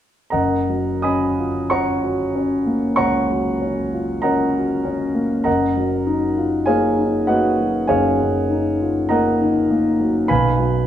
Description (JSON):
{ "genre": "classical, impressionist solo piano", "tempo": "40-51 BPM", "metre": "4/4", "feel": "rubato", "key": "F# major", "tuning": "A4 = 441 Hz", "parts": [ { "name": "warm concert grand piano", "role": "solo", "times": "0.3-10.9 s", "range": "F#1 to D#6", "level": "-17 LUFS", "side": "equal", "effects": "none" } ], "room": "wet recital hall reverb, RT60 1.6 s", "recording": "dark, warm production", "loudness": "-17 LUFS", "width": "side -10 dB against mid", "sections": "0.3-10.9 A section", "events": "none", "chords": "0.3 F#maj7; 10.3 B5" }